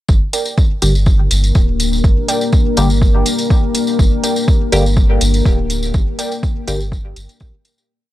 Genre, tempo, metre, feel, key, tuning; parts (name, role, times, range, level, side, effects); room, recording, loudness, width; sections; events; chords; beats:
dub techno; 123 BPM; 4/4; straight; G minor; A4 = 441 Hz
deep dark ambient pad; sustained chords; 1.3-7.9 s; Bb3 to Bb4; -20 LUFS; left 4 dB; chorus, built-in reverb, sidechain pumping
soft dub sub bass; bass; 0.1-7.5 s; D1 to Bb1; -16 LUFS; equal; sidechain pumping
electronic kick drum; drums; 0.1-7.5 s; -13 LUFS; equal
tambourine; percussion; 0.1-7.9 s; -24 LUFS; left 1 dB
warbly dusty pluck; riff; 0.3-6.3 s; Bb4 to G5; -25 LUFS; right 3 dB; chorus, sidechain pumping, dub echo
electronic hi-hat; drums; 0.3-7.8 s; -23 LUFS; right 2 dB
filtered dub chord stab; stabs; 0.8-6.8 s; D3 to G4; -20 LUFS; equal; chorus, phaser, vintage 12-bit sampler grit, sidechain pumping, dub echo
little or no reverb; dry, gritty hardware recording; -12 LUFS; side -15 dB against mid
0.1-7.9 groove
fade-out 5.3-7.9
0.1 Gm
| 0.09 0.58 1.06 1.55 | 2.04 2.53 3.02 3.50 | 3.99 4.48 4.97 5.46 | 5.94 6.43 6.92 7.41